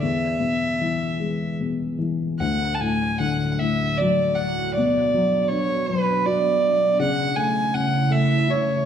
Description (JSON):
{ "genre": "celtic folk, Celtic slow air", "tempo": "77 BPM", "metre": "3/4", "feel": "uneven beats, rubato", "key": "unclear", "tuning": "A4 = 439 Hz", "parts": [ { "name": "warm fiddle", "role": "melody", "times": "0.0-8.9 s", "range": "B4 to A5", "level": "-22 LUFS", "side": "right 2 dB", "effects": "slapback echo" }, { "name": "felt-muted upright piano", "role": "accompaniment", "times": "0.0-8.9 s", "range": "D2 to F#4", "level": "-24 LUFS", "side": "left 4 dB", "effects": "none" }, { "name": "evolving wavetable pad", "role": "sustained chords", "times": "3.3-8.9 s", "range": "D2 to E4", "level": "-27 LUFS", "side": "right 2 dB", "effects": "phaser, built-in reverb" } ], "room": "moderate scoring stage reverb, RT60 1.6 s", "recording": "dark, warm production", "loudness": "-19 LUFS", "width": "side -8 dB against mid", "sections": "0.0-2.4 A section; 2.4-8.9 B section", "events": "none", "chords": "0.0 E; 2.4 D; 4.8 Bm; 7.0 A/C#" }